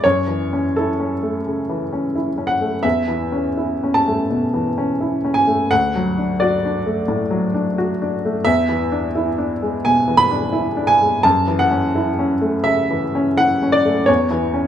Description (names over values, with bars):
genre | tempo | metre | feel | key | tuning
neoclassical minimalist piano | 86 BPM | 4/4 | rubato | A major | A4 = 440 Hz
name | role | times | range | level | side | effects
clear upright piano | solo | 0.0-14.7 s | D2 to B5 | -16 LUFS | equal | none
room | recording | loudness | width
moderate large studio reverb, RT60 1.0 s | band playing live in one room | -16 LUFS | side -10 dB against mid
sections
0.0-14.7 A section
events
none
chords
0.0 F#m7; 2.8 Aadd9/E; 5.7 D; 8.4 E7; 11.2 F#m7; 14.1 A/E (rootless)